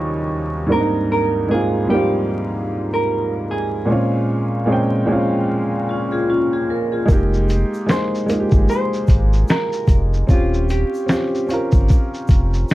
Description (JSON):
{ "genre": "lo-fi hip hop", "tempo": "75 BPM", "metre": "4/4", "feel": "swing 57% on 16ths", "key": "Bb dorian", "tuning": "A4 = 439 Hz", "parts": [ { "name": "warm upright piano", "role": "accompaniment", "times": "0.0-12.7 s", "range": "Eb2 to G5", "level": "-19 LUFS", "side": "right 1 dB", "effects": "cassette tape, low-pass filter" }, { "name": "vintage hollow-body jazz guitar", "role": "melody", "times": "0.7-12.7 s", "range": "F4 to C5", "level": "-23 LUFS", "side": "right 1 dB", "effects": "low-pass filter" }, { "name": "vibraphone with medium hard mallets", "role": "second line", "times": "5.9-7.3 s", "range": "Db4 to Bb4", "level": "-21 LUFS", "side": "left 2 dB", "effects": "low-pass filter, tape echo" }, { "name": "sub bass with octave", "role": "bass", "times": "7.1-12.6 s", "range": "Eb1 to Ab1", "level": "-17 LUFS", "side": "equal", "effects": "none" }, { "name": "lo-fi sampler-style drum kit", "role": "drums", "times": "7.1-12.7 s", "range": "finger snaps, hi-hat, kick drum, shaker, snare drum", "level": "-16 LUFS", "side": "equal", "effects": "none" }, { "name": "egg shaker", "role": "percussion", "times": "7.1-12.7 s", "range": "none", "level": "-49 LUFS", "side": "left 3 dB", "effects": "none" } ], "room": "light reverb", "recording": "vinyl crackle", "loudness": "-16 LUFS", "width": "side -16 dB against mid", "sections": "0.0-12.7 A section", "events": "none", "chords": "0.0 Eb13; 0.7 Abmaj9; 3.9 Bbm9; 7.1 Fm11; 10.3 Eb13" }